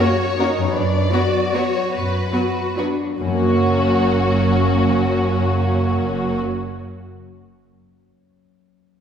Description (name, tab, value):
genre	classical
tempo	133-170 BPM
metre	3/4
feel	rubato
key	F# major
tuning	A4 = 440 Hz
part	warm studio violin section	melody	0.0-6.4 s	F#4 to D5	-26 LUFS	left 3 dB	none
part	rich studio violin section	second line	0.0-6.4 s	C#4 to B4	-25 LUFS	left 2 dB	none
part	rich studio viola section	accompaniment	0.0-6.4 s	F#3 to C#4	-24 LUFS	right 3 dB	none
part	warm French horn section	sustained chords	0.0-6.4 s	A#3 to F#4	-25 LUFS	left 3 dB	none
part	concert harp	arpeggios	0.0-7.3 s	F#2 to F#5	-28 LUFS	left 4 dB	none
part	rich studio cello section	bass	0.0-6.4 s	F#2 to F#4	-25 LUFS	right 2 dB	none
part	warm studio double bass section	bass	0.8-6.4 s	F#1 to F#2	-24 LUFS	right 2 dB	none
room	wet scoring stage reverb, RT60 2.0 s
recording	heard from further back in the room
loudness	-16 LUFS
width	side -8 dB against mid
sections	0.0-3.2 A section; 3.2-5.6 B section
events	slowing down 0.2-3.2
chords	0.0 F#; 0.8 Bm/F#; 3.2 F#